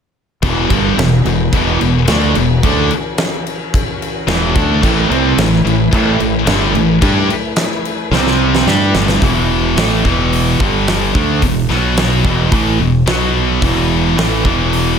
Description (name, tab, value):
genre	hard rock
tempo	109 BPM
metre	4/4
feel	straight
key	unclear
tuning	A4 = 440 Hz
part	bright tonewheel organ	sustained chords	0.4-9.2 s	E3 to D5	-26 LUFS	equal	chorus vibrato, slow rotary speaker
part	distorted electric guitar	riff	0.4-15.0 s	E2 to G4	-17 LUFS	right 11 dB	distortion
part	scooped high-gain guitar	riff	0.4-15.0 s	E2 to G4	-16 LUFS	left 11 dB	distortion
part	modern bright fingered electric bass	bass	0.4-15.0 s	E1 to G2	-18 LUFS	equal	none
part	huge arena drum kit	drums	0.4-14.9 s	crash cymbal, hi-hat, kick drum, snare drum	-18 LUFS	equal	none
room	light reverb, small room ambience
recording	none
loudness	-11 LUFS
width	side -7 dB against mid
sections	0.4-9.2 A section; 9.2-15.0 B section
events	drum fill 8.1-9.2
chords	0.4 E5; 4.8 A5; 8.1 C5; 8.7 A5; 9.2 E5; 10.6 G5; 11.1 E5; 11.7 B5; 12.2 E5; 13.1 B5; 13.6 E5